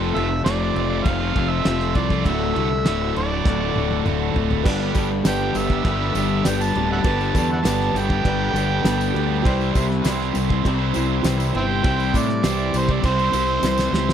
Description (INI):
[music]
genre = classic rock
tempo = 100 BPM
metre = 4/4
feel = straight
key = unclear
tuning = A4 = 439 Hz
[part]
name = picked acoustic archtop guitar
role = accompaniment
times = 0.0-14.1 s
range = C3 to C5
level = -32 LUFS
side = left 7 dB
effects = none
[part]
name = cranked stack guitar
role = riff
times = 0.0-14.1 s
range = D2 to C5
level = -26 LUFS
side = right 13 dB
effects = overdrive
[part]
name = overdriven semi-hollow guitar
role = riff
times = 0.0-14.1 s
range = D2 to C4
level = -26 LUFS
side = left 15 dB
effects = none
[part]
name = fuzz fingered electric bass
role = bass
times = 0.0-14.1 s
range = D1 to A2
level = -24 LUFS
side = equal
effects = overdrive
[part]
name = overdriven harmonica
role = melody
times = 0.1-14.1 s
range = C5 to A5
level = -25 LUFS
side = right 2 dB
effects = none
[part]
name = cloth-damped thuddy drum kit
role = drums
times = 0.2-14.1 s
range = crash cymbal, kick drum, snare drum, toms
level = -25 LUFS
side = equal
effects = none
[part]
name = clear upright piano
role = accompaniment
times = 4.6-14.1 s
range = B3 to C5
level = -31 LUFS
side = right 7 dB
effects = none
[part]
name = tambourine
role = percussion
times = 4.9-14.0 s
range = none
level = -38 LUFS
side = left 12 dB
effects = none
[sound]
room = studio reverb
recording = dry, close 1970s-style studio recording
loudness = -18 LUFS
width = side -9 dB against mid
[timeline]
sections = 0.0-4.7 A section; 4.7-14.1 B section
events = drum fill 3.5-4.7, 13.6-14.1; harmonica solo 4.7-14.1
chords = 0.0 F; 2.3 D; 4.7 G; 9.5 C